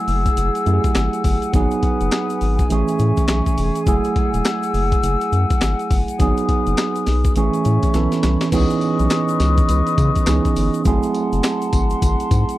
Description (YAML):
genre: R&B, new jack swing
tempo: 103 BPM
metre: 4/4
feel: swing 62% on 16ths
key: C# minor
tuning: A4 = 440 Hz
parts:
  - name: mellow tine electric piano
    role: accompaniment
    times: 0.0-12.6 s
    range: E3 to A4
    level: -21 LUFS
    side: right 4 dB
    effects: none
  - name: mellow hollow small flute group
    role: sustained chords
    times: 0.0-12.6 s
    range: G#4 to E6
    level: -24 LUFS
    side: left 4 dB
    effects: none
  - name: round analog bass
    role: bass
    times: 0.1-12.4 s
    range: E1 to C#3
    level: -19 LUFS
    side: left 1 dB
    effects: none
  - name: breakbeat sampler-style drum kit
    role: drums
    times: 0.1-12.6 s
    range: crash cymbal, handclaps, hi-hat, kick drum, snare drum, tambourine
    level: -20 LUFS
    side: left 1 dB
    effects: none
  - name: egg shaker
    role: percussion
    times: 0.1-12.6 s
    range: none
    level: -41 LUFS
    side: left 15 dB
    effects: none
room: little or no reverb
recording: dry, close 1970s-style studio recording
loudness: -16 LUFS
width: side -15 dB against mid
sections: 0.0-8.5 A section; 8.5-12.6 B section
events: drum fill 7.9-8.5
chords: 0.0 F#m9; 1.5 G#m7; 2.7 Amaj7; 3.9 F#m9; 6.2 G#m7; 7.4 Amaj7; 7.9 B9sus4; 8.5 C#m9; 10.9 G#7b9b13